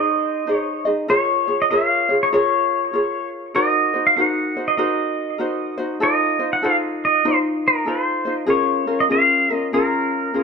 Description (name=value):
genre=Hawaiian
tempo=98 BPM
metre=4/4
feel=swing 63% on 8ths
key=Bb minor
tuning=A4 = 436 Hz
part: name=pedal steel guitar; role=melody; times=0.0-10.4 s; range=Bb4 to Gb5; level=-19 LUFS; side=right 1 dB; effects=digital delay
part: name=ukulele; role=accompaniment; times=0.0-10.4 s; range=Db4 to Eb5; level=-21 LUFS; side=left 1 dB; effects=none
room=light reverb, studio reverb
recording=none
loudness=-17 LUFS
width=side -5 dB against mid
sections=0.0-10.4 A section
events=none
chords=0.0 Ab; 1.1 Bbm7; 3.6 Cm7b5; 6.0 F7; 8.5 Bbm7